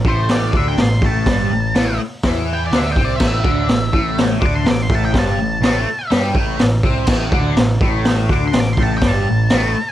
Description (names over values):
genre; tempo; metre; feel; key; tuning
garage rock duo or trio; 124 BPM; 4/4; straight; A minor; A4 = 440 Hz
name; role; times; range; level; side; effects
growling picked electric bass; bass; 0.0-9.7 s; G1 to G2; -22 LUFS; equal; overdrive
raw garage drum kit; drums; 0.0-9.6 s; crash cymbal, hi-hat, kick drum, snare drum; -17 LUFS; equal; none
octave-fuzz lead guitar; melody; 0.1-9.9 s; C5 to D6; -23 LUFS; equal; distortion
cranked stack guitar; riff; 0.1-9.8 s; G2 to G4; -20 LUFS; equal; overdrive, phaser
room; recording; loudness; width
light reverb; cassette tape; -14 LUFS; side -13 dB against mid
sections
0.0-9.9 A section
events
lead electric guitar solo 0.0-9.9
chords
0.0 Am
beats
0.30 0.79 | 1.27 1.76 2.25 2.73 | 3.21 3.70 4.18 4.67 | 5.15 5.64 6.12 6.60 | 7.09 7.57 8.05 8.54 | 9.02 9.51